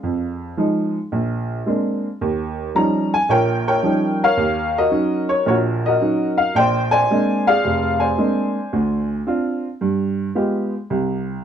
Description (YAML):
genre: solo jazz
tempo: 111 BPM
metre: 4/4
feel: swing 68% on 8ths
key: Bb mixolydian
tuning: A4 = 440 Hz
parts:
  - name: warm upright piano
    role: solo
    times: 0.0-11.4 s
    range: F1 to Bb5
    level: -17 LUFS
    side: equal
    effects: none
room: moderate studio reverb, RT60 0.8 s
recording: dark, warm production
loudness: -17 LUFS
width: side -8 dB against mid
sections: 0.0-11.4 A section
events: none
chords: 0.0 Fm7; 1.1 Bb9; 2.2 Eb9; 4.4 Ebm7; 6.5 Bb9; 8.7 Dm7; 9.8 G7b9; 10.9 N.C.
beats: | 0.04 0.58 1.12 1.66 | 2.21 2.75 3.29 3.83 | 4.37 4.92 5.46 6.00 | 6.54 7.08 7.63 8.17 | 8.71 9.26 9.80 10.34 | 10.88